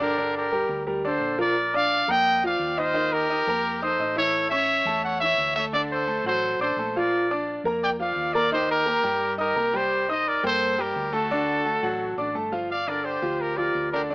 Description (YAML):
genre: latin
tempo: 172 BPM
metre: 4/4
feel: straight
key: G minor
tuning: A4 = 440 Hz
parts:
  - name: bright trumpet section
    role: melody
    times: 0.0-14.1 s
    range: F4 to G5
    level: -23 LUFS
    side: equal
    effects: none
  - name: bright concert grand piano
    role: accompaniment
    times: 0.0-14.1 s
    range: D3 to Eb6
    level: -26 LUFS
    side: equal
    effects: none
  - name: hollow-body short-scale fingered electric bass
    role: bass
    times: 0.0-14.1 s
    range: G1 to G2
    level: -40 LUFS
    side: equal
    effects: none
room: light reverb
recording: AM radio sound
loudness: -22 LUFS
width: side -25 dB against mid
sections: 0.0-1.6 A section; 1.6-12.7 B section; 12.7-14.1 A section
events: none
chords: 0.2 Gm; 1.6 Bb; 3.0 Ebsus2; 4.3 A; 5.7 D; 7.1 Bb; 8.5 Eb; 9.9 Cm7; 11.3 D; 12.7 Gm7